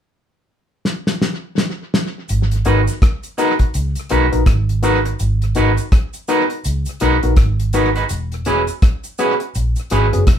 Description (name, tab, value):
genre	lovers rock reggae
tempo	83 BPM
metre	4/4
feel	swing 60% on 16ths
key	G# minor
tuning	A4 = 439 Hz
part	damped 70s drum kit	drums	0.9-10.4 s	hi-hat, kick drum, rim click, snare drum	-17 LUFS	equal	tape echo
part	vintage muted fingered electric bass	bass	2.3-10.4 s	E1 to C#2	-17 LUFS	right 1 dB	none
part	cabasa	percussion	2.3-10.1 s	none	-34 LUFS	right 3 dB	none
part	barky tine electric piano	accompaniment	2.7-10.2 s	B3 to A#4	-19 LUFS	left 3 dB	overdrive
part	electric guitar at the edge of break-up	stabs	2.7-10.1 s	G#3 to B4	-20 LUFS	right 5 dB	none
room	moderate studio ambience, RT60 0.5 s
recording	band playing live in one room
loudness	-15 LUFS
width	side -9 dB against mid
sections	0.0-2.3 A section; 2.3-10.4 B section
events	drum fill 0.8-2.3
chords	0.0 N.C.; 2.3 G#m7; 8.1 E6